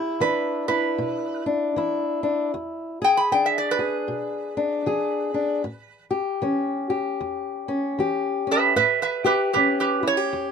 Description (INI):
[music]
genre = acoustic country blues, solo or duo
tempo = 77 BPM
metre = 4/4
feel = swing 60% on 8ths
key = unclear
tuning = A4 = 440 Hz
[part]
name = metal-body resonator slide guitar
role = melody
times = 0.0-10.5 s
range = G4 to B5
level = -21 LUFS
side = right 3 dB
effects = none
[part]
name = fingerpicked old ladder-braced acoustic guitar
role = accompaniment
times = 0.0-10.5 s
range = E2 to G#4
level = -24 LUFS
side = left 3 dB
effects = none
[sound]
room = moderate booth ambience, RT60 0.2 s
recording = minimal, uncompressed stereo recording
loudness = -21 LUFS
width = side -6 dB against mid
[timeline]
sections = 0.0-10.5 A section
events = none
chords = 0.0 E7; 5.7 A7